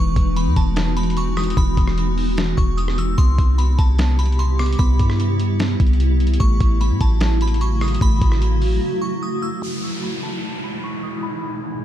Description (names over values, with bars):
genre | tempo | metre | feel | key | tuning
hip hop, atmospheric cloud-rap | 149 BPM | 4/4 | half-time | unclear | A4 = 440 Hz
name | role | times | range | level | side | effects
glassy synth bell | melody | 0.0-11.6 s | A5 to E6 | -29 LUFS | left 1 dB | chorus, low-pass filter, digital delay
granular cloud pad | sustained chords | 0.0-11.8 s | B2 to G4 | -24 LUFS | equal | built-in reverb, low-pass filter
muted felt-like synth keys | arpeggios | 0.0-9.6 s | E3 to B3 | -29 LUFS | left 1 dB | chorus, digital delay
warm 808-style bass | bass | 0.0-8.8 s | E1 to A2 | -18 LUFS | equal | none
lo-fi sampler-style drum kit | drums | 0.2-8.7 s | hi-hat, kick drum, rim click, snare drum | -21 LUFS | equal | none
downlifter | sound effects | 9.6-11.8 s | none | -32 LUFS | equal | none
room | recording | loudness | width
little or no reverb | dark, warm production | -16 LUFS | side -12 dB against mid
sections
0.0-9.6 A section; 9.6-11.8 B section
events
break 8.8-9.6; filter sweep 9.6-11.8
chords
0.0 Emaj7; 3.2 Cmaj7; 6.4 A6; 9.6 Emaj7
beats
0.36 0.77 1.17 | 1.57 1.97 2.38 2.78 | 3.18 3.58 3.99 4.39 | 4.79 5.20 5.60 6.00 | 6.40 6.80 7.21 7.61 | 8.01 8.42 8.82 9.22 | 9.62 10.03 10.43 10.83 | 11.23 11.64